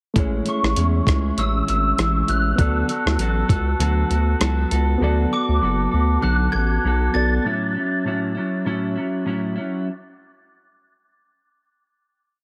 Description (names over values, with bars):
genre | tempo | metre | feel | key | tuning
indie pop, bedroom pop | 99 BPM | 4/4 | swing 55% on 16ths | A major | A4 = 440 Hz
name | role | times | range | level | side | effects
reed electric piano | accompaniment | 0.1-7.5 s | A3 to D5 | -30 LUFS | equal | cassette tape
semi-hollow electric guitar | accompaniment | 0.2-9.9 s | A2 to A4 | -27 LUFS | equal | subtle chorus, vibrato effect
round analog bass | bass | 0.2-7.4 s | F#1 to E2 | -23 LUFS | equal | none
dusty soul sampler-style drum kit | drums | 0.2-4.9 s | hi-hat, kick drum, rim click | -24 LUFS | equal | none
glockenspiel with rubber mallets | melody | 0.5-8.3 s | C#6 to A6 | -28 LUFS | equal | ensemble chorus, slapback echo
room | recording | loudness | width
light reverb | heavily compressed radio sound | -21 LUFS | mono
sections
0.2-9.9 A section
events
none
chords
0.2 Amaj7; 2.6 D6; 5.0 Bm7; 7.4 A6